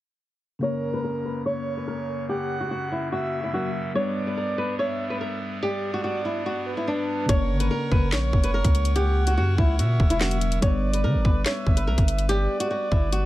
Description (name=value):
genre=hip hop, drill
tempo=144 BPM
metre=4/4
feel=half-time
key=unclear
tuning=A4 = 445 Hz
part: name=flamenco guitar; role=melody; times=0.6-13.3 s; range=D4 to C#5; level=-28 LUFS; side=equal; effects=low-pass filter, tape echo
part: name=breathy flute-like synth lead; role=second line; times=0.6-13.3 s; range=A#4 to F#5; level=-31 LUFS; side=right 2 dB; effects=chorus, tremolo, tape echo
part: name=tine electric piano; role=accompaniment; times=0.6-13.3 s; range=C#3 to B4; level=-31 LUFS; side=left 3 dB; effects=overdrive, medium stereo tremolo, low-pass filter
part: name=pipe organ, clarinet reed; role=sustained chords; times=0.6-13.3 s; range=F#2 to C#6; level=-36 LUFS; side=right 1 dB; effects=low-pass filter
part: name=long sustained 808-style bass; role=bass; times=7.3-13.3 s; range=E1 to D3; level=-23 LUFS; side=equal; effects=none
part: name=drill drum kit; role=drums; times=7.3-13.2 s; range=handclaps, hi-hat, kick drum, snare drum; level=-22 LUFS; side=equal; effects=none
room=little or no reverb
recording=none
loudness=-22 LUFS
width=side -16 dB against mid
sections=0.6-7.3 A section; 7.3-13.3 B section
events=filter sweep 0.6-7.3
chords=0.6 F#; 4.0 G; 7.3 F#; 10.6 G